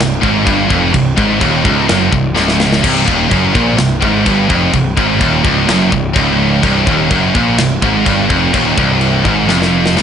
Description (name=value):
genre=heavy metal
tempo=126 BPM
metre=4/4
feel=straight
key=C minor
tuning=A4 = 440 Hz
part: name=heavy high-gain guitar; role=riff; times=0.0-10.0 s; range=C2 to Bb2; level=-15 LUFS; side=left 12 dB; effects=distortion
part: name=scooped high-gain guitar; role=riff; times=0.0-10.0 s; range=C2 to Bb2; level=-14 LUFS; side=right 7 dB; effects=distortion
part: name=fuzz picked electric bass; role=bass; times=0.0-10.0 s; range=C1 to Bb1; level=-18 LUFS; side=left 1 dB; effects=overdrive
part: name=tight metal drum kit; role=drums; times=0.0-10.0 s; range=china cymbal, crash cymbal, kick drum, snare drum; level=-18 LUFS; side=left 1 dB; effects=none
room=light reverb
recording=nothing above 10.8 kHz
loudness=-10 LUFS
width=side -8 dB against mid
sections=0.0-10.0 A section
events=half time 0.0-10.0; drum fill 2.4-2.8, 9.5-10.0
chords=0.0 Cm